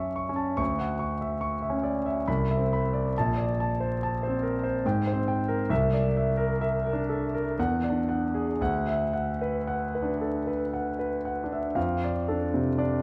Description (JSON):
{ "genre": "classical, impressionist solo piano", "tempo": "55-74 BPM", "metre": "3/4", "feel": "rubato", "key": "unclear", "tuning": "A4 = 440 Hz", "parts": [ { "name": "clear concert grand piano", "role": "solo", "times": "0.0-13.0 s", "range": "Bb1 to C#6", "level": "-28 LUFS", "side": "equal", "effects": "none" } ], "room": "moderate recital hall reverb, RT60 1.6 s", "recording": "vinyl crackle", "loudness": "-28 LUFS", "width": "mono", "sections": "0.0-11.8 A section; 11.8-13.0 B section", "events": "none", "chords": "0.0 F#m7; 0.6 Dmaj9; 2.3 Cmaj9; 3.1 Bbmaj9; 4.8 G#maj9; 5.7 C9; 7.6 E9; 8.6 D69; 11.8 F6", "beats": "| 0.59 1.43 2.27 | 3.14 3.99 4.84 | 5.70 6.60 7.57 | 8.60 9.66 10.72 | 11.76 12.77" }